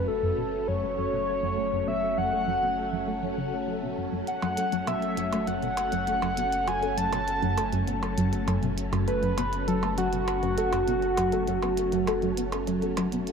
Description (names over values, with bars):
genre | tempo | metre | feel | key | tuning
ambient, sequencer-driven space music | 100 BPM | 4/4 | straight | F# minor | A4 = 440 Hz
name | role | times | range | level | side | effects
pulse-width lead | melody | 0.0-13.2 s | F#4 to A5 | -28 LUFS | equal | chorus, vintage 12-bit sampler grit, ping-pong delay
phased string machine | sustained chords | 0.0-13.3 s | F#3 to C#4 | -32 LUFS | equal | ensemble chorus, phaser
tight sequenced synth | riff | 0.0-13.2 s | F#2 to A3 | -30 LUFS | equal | chorus, phaser, ping-pong delay
round analog bass | bass | 0.0-13.3 s | F#1 | -37 LUFS | equal | tube saturation
wind-like tuned noise texture | texture | 0.0-13.3 s | A4 | -44 LUFS | right 2 dB | built-in reverb
electronic hi-hat and percussion blips | percussion | 4.3-13.3 s | none | -37 LUFS | right 3 dB | ping-pong delay
room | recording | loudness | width
wet plate reverb, RT60 2.8 s | none | -25 LUFS | side -6 dB against mid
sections
0.0-13.3 A section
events
fade-in on analog synth bass 0.0-13.3; fade-in on synth texture 0.0-13.3; filter sweep on synth arpeggio sound 0.0-13.3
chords
0.0 F#m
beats
0.08 0.68 1.28 | 1.88 2.48 3.08 3.68 | 4.28 4.88 5.48 6.08 | 6.68 7.28 7.88 8.48 | 9.08 9.68 10.28 10.88 | 11.48 12.08 12.68 13.28